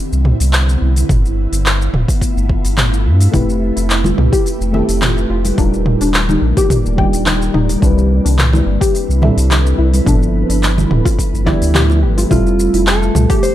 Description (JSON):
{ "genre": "sunset chillout", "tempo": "107 BPM", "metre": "4/4", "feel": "swing 53% on 16ths", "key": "F lydian", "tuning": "A4 = 439 Hz", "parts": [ { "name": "ethereal airy pad", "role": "sustained chords", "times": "0.0-13.5 s", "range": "D3 to E5", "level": "-23 LUFS", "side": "right 1 dB", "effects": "ensemble chorus, built-in reverb, phaser" }, { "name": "warm sub bass", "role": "bass", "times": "0.1-13.3 s", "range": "D1 to G2", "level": "-14 LUFS", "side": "equal", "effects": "tube saturation" }, { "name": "deep house drum kit", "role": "drums", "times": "0.1-13.5 s", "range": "handclaps, hi-hat, shaker, toms", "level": "-18 LUFS", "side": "equal", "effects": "none" }, { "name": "electronic kick drum", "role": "drums", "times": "1.1-13.4 s", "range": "none", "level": "-16 LUFS", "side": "equal", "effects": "none" }, { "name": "mellow FM electric piano", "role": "accompaniment", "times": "3.3-13.5 s", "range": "F3 to E5", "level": "-20 LUFS", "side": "moving between left 6 dB and right 1 dB", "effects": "chorus, auto-pan, tape echo" }, { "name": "soft round pluck", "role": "arpeggios", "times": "3.3-13.4 s", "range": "D4 to G5", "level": "-21 LUFS", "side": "left 4 dB", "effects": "ensemble chorus, tape echo" }, { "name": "congas and bongos", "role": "percussion", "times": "4.0-12.3 s", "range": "none", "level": "-22 LUFS", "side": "right 3 dB", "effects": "none" }, { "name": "mellow electric guitar", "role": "melody", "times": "11.5-13.5 s", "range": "E4 to C5", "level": "-18 LUFS", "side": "right 2 dB", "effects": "tape echo" } ], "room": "digital ambience", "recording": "dry, gritty hardware recording", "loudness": "-11 LUFS", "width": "side -13 dB against mid", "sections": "0.0-12.3 A section; 12.3-13.5 B section", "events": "none", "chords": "0.0 Cmaj9; 1.1 G13; 3.3 Fmaj9#11; 5.6 Ebmaj7; 7.8 Cmaj9; 10.1 G13; 12.3 Fmaj9", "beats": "0.53 | 1.09 1.66 2.21 2.78 | 3.34 3.90 4.46 5.02 | 5.58 6.14 6.70 7.26 | 7.82 8.38 8.94 9.51 | 10.07 10.63 11.19 11.75 | 12.31 12.87 13.43" }